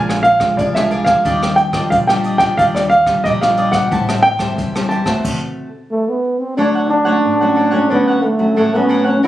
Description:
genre	samba and choro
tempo	90 BPM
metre	4/4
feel	straight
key	unclear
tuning	A4 = 440 Hz
part	cavaquinho	accompaniment	0.0-9.3 s	D4 to A5	-23 LUFS	right 2 dB	none
part	nylon-string guitar	accompaniment	0.0-9.3 s	F#2 to F#4	-19 LUFS	left 2 dB	none
part	upright bass	bass	0.0-5.1 s	A1 to E2	-26 LUFS	equal	none
part	jazz brush drum kit	drums	0.1-5.4 s	crash cymbal, hi-hat, kick drum, rim click	-23 LUFS	equal	none
part	warm grand piano	melody	0.2-6.2 s	D5 to A5	-14 LUFS	right 1 dB	none
part	breathy trombone	second line	5.9-9.3 s	A3 to E4	-14 LUFS	right 1 dB	none
room	moderate studio reverb, RT60 0.8 s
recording	recorded on a phone in the room, studio ambience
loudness	-12 LUFS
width	side -13 dB against mid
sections	0.0-6.6 A section; 6.6-9.3 B section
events	stop 5.2-6.6; trombone solo 6.6-9.3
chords	0.0 Bb7; 1.3 Ebmaj9; 3.9 Am7; 5.2 Am69; 6.6 Dmaj7

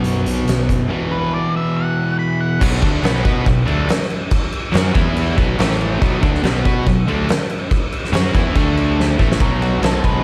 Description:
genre	blues rock power trio and southern rock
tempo	141 BPM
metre	4/4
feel	straight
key	unclear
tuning	A4 = 440 Hz
part	cranked stack guitar	riff	0.0-10.2 s	E2 to B4	-22 LUFS	equal	overdrive
part	fuzz fingered electric bass	bass	0.0-10.2 s	A1 to B2	-23 LUFS	equal	overdrive
part	oversized low-tuned drum kit	drums	0.0-10.1 s	crash cymbal, hi-hat, kick drum, ride cymbal, snare drum	-21 LUFS	equal	none
part	octave-fuzz lead guitar	melody	1.1-2.6, 9.6-10.2 s	F#4 to B5	-26 LUFS	equal	distortion
room	moderate scoring stage reverb, RT60 1.8 s, small room ambience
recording	big arena sound, vinyl crackle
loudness	-17 LUFS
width	mono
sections	0.0-2.6 A section; 2.6-9.4 B section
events	drum fill 9.0-9.4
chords	0.0 B5; 0.9 E5; 2.6 B5; 5.0 E5; 5.4 B5; 5.6 A5; 6.0 B5; 8.6 D5; 9.2 A5; 9.4 B5

